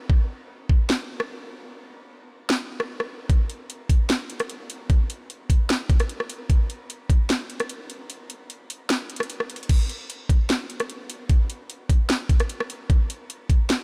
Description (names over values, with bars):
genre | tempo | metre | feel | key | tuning
hip hop | 150 BPM | 4/4 | half-time | none | none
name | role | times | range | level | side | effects
trap drum kit | drums | 0.1-13.8 s | crash cymbal, hi-hat, kick drum, rim click, snare drum | -24 LUFS | equal | vintage 12-bit sampler grit
room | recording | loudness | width
little or no reverb | none | -25 LUFS | mono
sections
0.0-9.7 A section; 9.7-13.8 B section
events
break 0.0-3.3, 8.1-9.7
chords
none